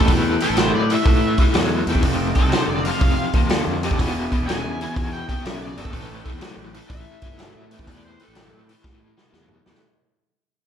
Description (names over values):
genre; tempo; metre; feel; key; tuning
blues rock power trio and southern rock; 123 BPM; 4/4; swing 67% on 8ths; A minor; A4 = 440 Hz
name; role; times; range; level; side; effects
overdriven slide guitar; melody; 0.0-8.7 s; A4 to G#5; -28 LUFS; left 1 dB; none
overdriven tonewheel organ; sustained chords; 0.0-9.8 s; C4 to B4; -32 LUFS; right 3 dB; slow rotary speaker
overdriven electric guitar; riff; 0.0-9.8 s; E2 to F#3; -25 LUFS; left 1 dB; tremolo
fuzz fingered electric bass; bass; 0.0-9.7 s; E1 to A2; -25 LUFS; equal; overdrive
vintage drum kit; drums; 0.0-9.8 s; hi-hat, kick drum, snare drum, toms; -21 LUFS; equal; none
room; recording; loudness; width
light reverb; band playing live in one room; -17 LUFS; side -9 dB against mid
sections
0.0-9.8 A section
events
fade-out 0.0-9.8; drum fill 8.8-9.8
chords
0.0 Am7; 2.0 F7; 4.0 E7#9; 5.9 Am7